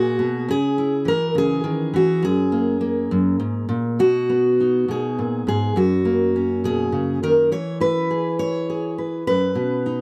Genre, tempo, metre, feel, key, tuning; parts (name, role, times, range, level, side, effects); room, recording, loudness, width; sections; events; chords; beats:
folk, solo fingerstyle acoustic guitar; 68 BPM (dotted quarters); 6/8; straight; B major; A4 = 442 Hz
fingerpicked steel-string acoustic guitar; solo; 0.0-10.0 s; F#2 to C#5; -21 LUFS; equal
small room ambience; dry, close 1970s-style studio recording; -21 LUFS; mono
0.0-4.0 A section; 4.0-10.0 B section
0.5 C#m; 2.2 F#add9; 4.0 B; 5.8 F#; 7.5 E; 9.3 B/F#
| 0.48 1.35 | 2.23 3.11 | 4.00 4.88 | 5.77 6.65 | 7.52 8.39 | 9.27